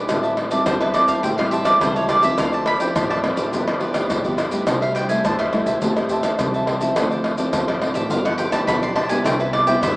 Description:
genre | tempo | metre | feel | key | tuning
samba and choro | 105 BPM | 4/4 | straight | unclear | A4 = 440 Hz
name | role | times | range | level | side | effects
cavaquinho | accompaniment | 0.0-10.0 s | E4 to A5 | -24 LUFS | right 1 dB | none
nylon-string guitar | accompaniment | 0.0-10.0 s | G2 to B4 | -25 LUFS | left 1 dB | none
upright bass | bass | 0.1-10.0 s | G1 to G2 | -31 LUFS | equal | none
maracas, surdo, pandeiro and tamborim | percussion | 0.1-10.0 s | none | -21 LUFS | equal | none
bowl-back mandolin | melody | 0.5-10.0 s | B4 to C6 | -22 LUFS | right 1 dB | none
room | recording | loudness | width
wet huge ambient reverb, RT60 7.3 s | in a vast, echoing space, small speaker sound | -17 LUFS | side -22 dB against mid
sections
0.0-10.0 A section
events
mandolin solo 0.0-10.0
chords
0.1 Am7; 2.4 Dm9; 3.5 G13; 4.7 C6; 5.8 Am9; 7.0 Dm9; 8.1 G6; 9.3 Cmaj7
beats
| 0.09 0.66 1.24 1.81 | 2.38 2.96 3.53 4.10 | 4.67 5.25 5.82 6.39 | 6.96 7.54 8.11 8.68 | 9.25 9.82

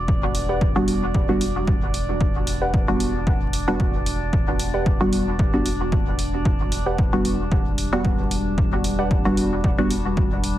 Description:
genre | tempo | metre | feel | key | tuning
dub techno | 113 BPM | 4/4 | swing 55% on 16ths | E minor | A4 = 439 Hz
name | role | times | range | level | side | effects
filtered dub chord stab | stabs | 0.0-9.9 s | G3 to F#4 | -24 LUFS | equal | chorus, phaser, sidechain pumping, dub echo
warm sub bass | bass | 0.0-10.6 s | E1 | -27 LUFS | equal | sidechain pumping
drifting glass-harmonics texture | texture | 0.0-10.6 s | G3 to D5 | -29 LUFS | equal | chorus, built-in reverb, sidechain pumping
electronic kick drum | drums | 0.1-10.3 s | none | -22 LUFS | equal | none
electronic hi-hat | drums | 0.3-10.6 s | none | -31 LUFS | right 1 dB | none
warbly dusty pluck | riff | 0.5-9.2 s | G4 to F#5 | -30 LUFS | right 1 dB | chorus, sidechain pumping, dub echo
room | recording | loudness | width
light reverb, digital ambience | heavily compressed radio sound, vinyl crackle | -19 LUFS | side -13 dB against mid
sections
0.0-10.6 A section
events
none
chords
0.0 Em9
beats
| 0.08 0.61 1.14 1.68 | 2.21 2.74 3.27 3.80 | 4.33 4.86 5.39 5.92 | 6.45 6.98 7.51 8.05 | 8.58 9.11 9.64 10.17

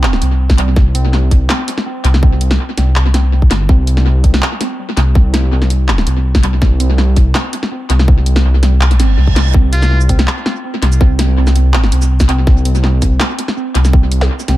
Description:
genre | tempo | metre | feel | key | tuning
half-time drum and bass | 164 BPM | 4/4 | half-time | unclear | A4 = 435 Hz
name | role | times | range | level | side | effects
warbly dusty pluck | arpeggios | 0.0-14.6 s | G3 to C4 | -22 LUFS | right 3 dB | wide subtle chorus, tape echo
dark detuned saw bass | bass | 0.0-14.6 s | G1 to C2 | -11 LUFS | equal | none
drum and bass drum kit | drums | 0.0-14.6 s | handclaps, hi-hat, shaker, snare drum | -18 LUFS | equal | small room ambience, tape echo
electronic kick drum | drums | 0.5-14.0 s | none | -10 LUFS | equal | small room ambience
reverse cymbal | sound effects | 9.0-9.5 s | none | -26 LUFS | right 6 dB | none
trumpet with metal mute | melody | 9.7-10.0 s | F4 | -25 LUFS | right 1 dB | tape echo
room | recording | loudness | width
little or no reverb | echo-heavy mix | -10 LUFS | side -16 dB against mid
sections
0.0-14.6 A section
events
reverse cymbal 9.0-9.5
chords
none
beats
0.03 0.40 | 0.76 1.13 1.50 1.86 | 2.23 2.59 2.96 3.33 | 3.69 4.06 4.42 4.79 | 5.15 5.52 5.89 6.25 | 6.62 6.98 7.35 7.71 | 8.08 8.45 8.81 9.18 | 9.54 9.91 10.28 10.64 | 11.01 11.37 11.74 12.11 | 12.47 12.84 13.20 13.57 | 13.94 14.30

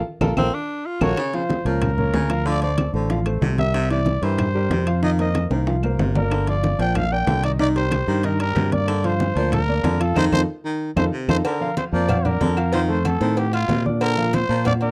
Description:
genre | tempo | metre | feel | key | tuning
latin, salsa | 187 BPM | 4/4 | straight | Bb major | A4 = 437 Hz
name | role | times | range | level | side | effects
clear concert grand piano | accompaniment | 0.2-14.9 s | Eb3 to F6 | -29 LUFS | equal | none
fingered electric bass | bass | 0.2-14.9 s | G1 to Bb2 | -24 LUFS | equal | none
bongos and cowbell | percussion | 0.2-14.8 s | none | -34 LUFS | equal | none
claves | percussion | 0.2-14.8 s | none | -40 LUFS | equal | none
congas | percussion | 0.2-14.9 s | none | -29 LUFS | equal | none
timbales and agogo bells | percussion | 0.2-14.9 s | none | -34 LUFS | equal | none
raspy tenor saxophone | melody | 0.4-1.2 s | C4 to Gb4 | -27 LUFS | equal | none
growling trumpet | melody | 1.0-14.9 s | F4 to G5 | -28 LUFS | equal | none
breathy baritone saxophone | second line | 1.2-14.8 s | C3 to F3 | -30 LUFS | equal | none
room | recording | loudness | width
little or no reverb | dry, close 1970s-style studio recording | -21 LUFS | mono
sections
0.0-1.2 A section; 1.2-11.5 B section; 11.5-14.9 C section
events
drum fill 0.0-1.2, 5.5-6.3, 10.8-11.5; band accent 0.0-1.2, 10.2-11.5; tenor saxophone solo 0.0-1.2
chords
0.0 Bbmaj7; 1.2 Db6; 2.5 Dm7; 3.7 C7; 5.0 Gm7; 7.6 Cm7; 8.9 Gm7; 10.2 F7; 11.5 Bb; 12.7 F7; 14.0 Bb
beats
0.21 0.53 0.85 | 1.18 1.50 1.82 2.14 | 2.46 2.78 3.10 3.42 | 3.74 4.07 4.39 4.71 | 5.03 5.35 5.67 5.99 | 6.31 6.63 6.96 7.28 | 7.60 7.92 8.24 8.56 | 8.88 9.20 9.53 9.85 | 10.17 10.49 10.81 11.13 | 11.45 11.77 12.09 12.41 | 12.73 13.05 13.38 13.70 | 14.02 14.34 14.66

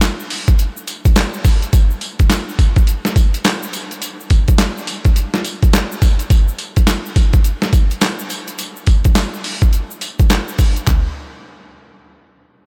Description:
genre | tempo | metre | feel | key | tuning
R&B | 105 BPM | 4/4 | swing 62% on 16ths | none | none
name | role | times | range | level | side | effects
boom bap sampler-style drum kit | drums | 0.0-11.0 s | handclaps, hi-hat, kick drum, snare drum, tambourine, toms | -16 LUFS | equal | overdrive
egg shaker | percussion | 0.0-11.1 s | none | -34 LUFS | equal | none
room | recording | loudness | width
light reverb | none | -16 LUFS | mono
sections
0.0-1.7 A section; 1.7-10.9 B section; 10.9-12.7 C section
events
none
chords
none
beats
0.02 0.59 1.16 | 1.73 2.30 2.87 3.45 | 4.02 4.59 5.16 5.73 | 6.30 6.87 7.45 8.02 | 8.59 9.16 9.73 10.30 | 10.87

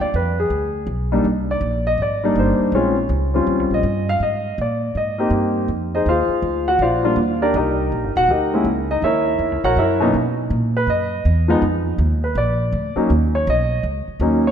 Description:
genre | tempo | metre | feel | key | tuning
jazz piano trio | 162 BPM | 4/4 | swing 64% on 8ths | Eb major, B major from 10.1 s | A4 = 436 Hz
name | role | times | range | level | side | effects
warm grand piano | melody | 0.0-14.5 s | Cb3 to Gb5 | -18 LUFS | left 1 dB | none
upright bass | bass | 0.0-14.5 s | Eb1 to B2 | -22 LUFS | right 1 dB | none
room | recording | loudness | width
moderate concert hall reverb, RT60 1.8 s | none | -17 LUFS | side -8 dB against mid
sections
0.0-10.1 A section; 10.1-14.5 B section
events
none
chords
0.0 G7b9 (rootless); 1.2 Cm9; 2.7 Bbm7; 3.5 Eb13; 4.2 Abmaj9; 5.7 Fm7; 6.4 Bb9; 7.2 Ebmaj7; 8.7 Gb7; 10.1 Bmaj7; 11.6 D#sus2; 12.4 A#; 13.1 D#7(no3)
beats
0.14 0.51 0.88 | 1.25 1.62 1.99 2.36 | 2.73 3.10 3.47 3.84 | 4.21 4.58 4.95 5.32 | 5.69 6.06 6.43 6.80 | 7.17 7.55 7.92 8.29 | 8.66 9.03 9.40 9.77 | 10.14 10.51 10.88 11.25 | 11.62 11.99 12.36 12.73 | 13.10 13.47 13.84 14.21

